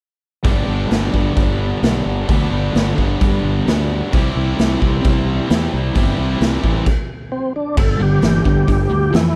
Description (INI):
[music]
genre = classic rock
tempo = 131 BPM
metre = 4/4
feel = straight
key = G major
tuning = A4 = 440 Hz
[part]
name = biting overdriven guitar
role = riff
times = 0.4-9.3 s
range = G2 to E4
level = -25 LUFS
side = equal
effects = none
[part]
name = distorted electric guitar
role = riff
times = 0.4-9.3 s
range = G2 to G4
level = -26 LUFS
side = equal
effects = overdrive
[part]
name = fuzz fingered electric bass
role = bass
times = 0.4-9.3 s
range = G1 to G2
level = -22 LUFS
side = equal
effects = overdrive
[part]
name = raw garage drum kit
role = drums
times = 0.4-9.2 s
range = crash cymbal, hi-hat, kick drum, snare drum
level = -21 LUFS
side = equal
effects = none
[part]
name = overdriven tonewheel organ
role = melody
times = 7.3-9.4 s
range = C4 to A4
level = -23 LUFS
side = equal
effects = slow rotary speaker, chorus vibrato
[sound]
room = little or no reverb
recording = none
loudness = -17 LUFS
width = mono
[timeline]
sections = 0.5-7.8 A section; 7.8-9.4 B section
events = stop 6.9-7.8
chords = 0.5 G; 4.1 C; 7.8 G5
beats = | 0.45 0.91 1.37 1.83 | 2.29 2.75 3.21 3.67 | 4.12 4.58 5.04 5.50 | 5.95 6.41 6.86 7.32 | 7.77 8.23 8.68 9.14